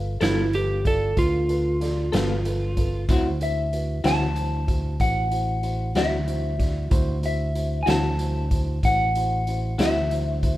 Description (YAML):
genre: slow blues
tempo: 63 BPM (dotted quarters)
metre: 12/8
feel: straight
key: unclear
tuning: A4 = 440 Hz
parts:
  - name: electric guitar through a small old amp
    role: melody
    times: 0.0-10.6 s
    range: E5 to A5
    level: -27 LUFS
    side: left 1 dB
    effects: wide subtle chorus
  - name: dark grand piano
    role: accompaniment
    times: 0.0-10.6 s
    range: E4 to D5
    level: -33 LUFS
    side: right 5 dB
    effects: none
  - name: fingered electric bass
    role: bass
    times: 0.0-10.6 s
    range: G1 to D2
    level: -26 LUFS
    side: equal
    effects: none
  - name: electric slide guitar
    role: second line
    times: 0.2-3.1 s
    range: E4 to A4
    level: -25 LUFS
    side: right 2 dB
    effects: none
  - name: electric guitar through a small old amp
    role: accompaniment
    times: 0.2-10.0 s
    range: D3 to A4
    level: -26 LUFS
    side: left 4 dB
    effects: tremolo
  - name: raw garage drum kit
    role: drums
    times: 0.2-10.6 s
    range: hi-hat, kick drum, snare drum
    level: -26 LUFS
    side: equal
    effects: none
room: little or no reverb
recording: rough home demo mix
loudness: -21 LUFS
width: side -15 dB against mid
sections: 0.0-10.6 A section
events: none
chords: 0.0 G9; 3.1 D9